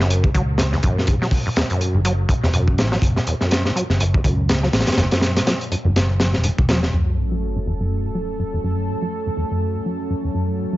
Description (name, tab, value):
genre	breakbeat, breaks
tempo	123 BPM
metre	4/4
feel	swing 58% on 16ths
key	unclear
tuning	A4 = 439 Hz
part	deep acid bass	riff	0.0-10.8 s	E2 to F#3	-22 LUFS	equal	digital delay
part	picked electric bass	bass	0.0-6.9 s	E1 to C#2	-20 LUFS	equal	none
part	crunchy breakbeat drum kit	drums	0.0-6.9 s	hi-hat, kick drum, snare drum	-19 LUFS	equal	none
part	lush unison pad	sustained chords	6.9-10.8 s	F#3 to A4	-26 LUFS	right 1 dB	chorus, vintage 12-bit sampler grit, sidechain pumping
part	sub drop	sound effects	6.9-8.9 s	none	-25 LUFS	equal	none
room	small room reverb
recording	nothing above 7.6 kHz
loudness	-17 LUFS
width	side -16 dB against mid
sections	0.0-6.9 A section; 6.9-10.8 B section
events	impact 6.9-8.9; filter sweep on acid bass 6.9-10.8; filter sweep on analog synth pad 6.9-10.8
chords	0.0 F#5; 6.9 F#m